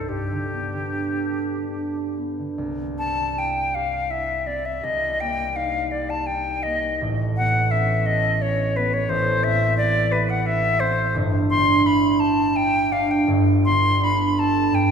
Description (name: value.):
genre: classical, impressionist duo for flute and harp.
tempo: 68-90 BPM.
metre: 3/4.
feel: rubato.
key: unclear.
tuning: A4 = 441 Hz.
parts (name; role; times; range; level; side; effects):
bright silver concert flute; melody; 0.0-14.9 s; G4 to C6; -22 LUFS; left 2 dB; none.
concert harp; accompaniment; 0.0-14.9 s; G1 to C5; -22 LUFS; right 2 dB; none.
room: wet concert hall reverb, RT60 2.1 s.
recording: minimal, uncompressed stereo recording.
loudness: -19 LUFS.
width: side -6 dB against mid.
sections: 0.0-2.6 A section; 2.6-14.9 B section.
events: none.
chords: 0.1 Gadd9; 2.6 Cadd9; 4.8 Ebmaj7/C; 7.0 Aadd9; 9.1 Cmaj7/A; 11.2 G6; 13.3 Bm7/G.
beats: | 0.09 0.95 1.77 | 2.60 3.37 4.10 | 4.83 5.56 6.28 | 7.01 7.73 8.43 | 9.11 9.78 10.47 | 11.17 11.87 12.56 | 13.29 14.02 14.74.